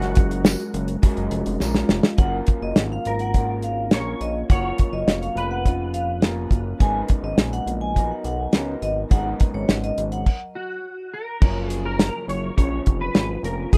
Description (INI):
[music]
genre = indie pop, bedroom pop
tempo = 104 BPM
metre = 4/4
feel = straight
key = F# major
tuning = A4 = 441 Hz
[part]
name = clean electric guitar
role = melody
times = 0.0-6.5, 10.6-13.8 s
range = F#4 to C#5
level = -34 LUFS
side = equal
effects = ensemble chorus, tape echo
[part]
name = electric guitar through a small old amp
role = accompaniment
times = 0.0-13.8 s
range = F#2 to A#4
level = -31 LUFS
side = equal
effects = lush chorus, vibrato effect
[part]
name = fat analog bass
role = bass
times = 0.0-13.8 s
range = E#1 to C#2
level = -29 LUFS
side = equal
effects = none
[part]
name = damped 70s drum kit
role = drums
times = 0.0-13.8 s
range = crash cymbal, hi-hat, kick drum, snare drum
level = -20 LUFS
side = equal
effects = none
[part]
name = tambourine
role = percussion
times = 0.5-1.7 s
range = none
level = -37 LUFS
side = equal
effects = none
[part]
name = vibraphone with medium hard mallets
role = second line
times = 2.2-10.4 s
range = C#5 to G#5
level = -30 LUFS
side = equal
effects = subtle chorus, tape echo
[sound]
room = little or no reverb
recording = rough home demo mix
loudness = -22 LUFS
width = mono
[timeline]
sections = 0.0-2.2 A section; 2.2-11.4 B section; 11.4-13.8 C section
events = drum fill 1.6-2.2; stop 10.3-11.4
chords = 0.0 F#maj9; 6.8 G#m11; 11.4 F#maj7